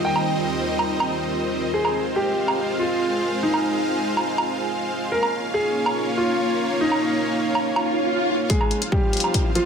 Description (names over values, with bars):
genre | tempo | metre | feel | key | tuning
heavy wobble dubstep | 142 BPM | 4/4 | half-time | F minor | A4 = 442 Hz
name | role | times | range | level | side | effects
warm grand piano | melody | 0.0-9.7 s | F3 to G5 | -25 LUFS | equal | ping-pong delay
supersaw pad | sustained chords | 0.0-9.7 s | Eb2 to F5 | -26 LUFS | right 1 dB | sidechain pumping
warbly tape-like pad | texture | 0.0-9.7 s | Eb3 to C6 | -27 LUFS | equal | chorus, built-in reverb, sidechain pumping
electronic woodblock and hi-hat | drums | 0.2-9.6 s | none | -25 LUFS | right 2 dB | high-pass filter on perc, low-pass filter on perc, high-pass filter on hats, low-pass filter on hats, high-pass filter on room, low-pass filter on room
swell and riser | sound effects | 7.8-9.7 s | none | -26 LUFS | right 1 dB | none
electronic kick drum | drums | 8.5-9.4 s | none | -22 LUFS | equal | none
room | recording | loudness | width
moderate digital room reverb, RT60 1.1 s, digital ambience | none | -20 LUFS | side -6 dB against mid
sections
0.0-8.5 A section; 8.5-9.7 B section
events
swell 7.8-8.5; build-up 8.5-9.7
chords
0.0 Cm/Eb; 1.7 Fm; 5.1 Bbm; 8.5 Fm